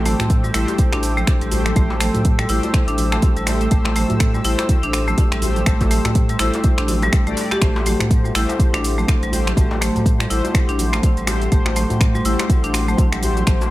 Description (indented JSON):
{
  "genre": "afro house",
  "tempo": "123 BPM",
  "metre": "4/4",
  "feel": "swing 58% on 16ths",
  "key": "A dorian",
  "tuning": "A4 = 440 Hz",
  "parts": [
    { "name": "dark analog pad", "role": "sustained chords", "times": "0.0-13.7 s", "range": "A4 to E6", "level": "-30 LUFS", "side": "right 1 dB", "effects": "chorus, sidechain pumping" },
    { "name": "mellow synth brass", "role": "stabs", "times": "0.0-13.7 s", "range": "A3 to D5", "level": "-26 LUFS", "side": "left 2 dB", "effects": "chorus, sidechain pumping, dub echo" },
    { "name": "warm sub bass", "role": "bass", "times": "0.0-13.7 s", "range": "A1 to A2", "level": "-22 LUFS", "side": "equal", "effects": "sidechain pumping" },
    { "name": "marimba with hard mallets", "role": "arpeggios", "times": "0.1-13.5 s", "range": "G3 to G4", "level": "-24 LUFS", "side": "equal", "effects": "sidechain pumping, dub echo" },
    { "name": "afro-pop drum kit", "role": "drums", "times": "0.1-13.7 s", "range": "cabasa, finger snaps, hi-hat", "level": "-25 LUFS", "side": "equal", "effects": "none" },
    { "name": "congas", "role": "percussion", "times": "0.1-13.7 s", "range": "none", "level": "-31 LUFS", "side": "right 3 dB", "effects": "none" },
    { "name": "djembe", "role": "percussion", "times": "0.1-13.7 s", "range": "none", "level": "-31 LUFS", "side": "left 2 dB", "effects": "none" },
    { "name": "electronic kick drum", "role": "drums", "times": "0.3-13.6 s", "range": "none", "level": "-17 LUFS", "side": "equal", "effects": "none" }
  ],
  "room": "digital ambience",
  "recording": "none",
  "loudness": "-15 LUFS",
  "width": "side -17 dB against mid",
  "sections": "0.0-13.7 A section",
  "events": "none",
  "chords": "0.0 Am7"
}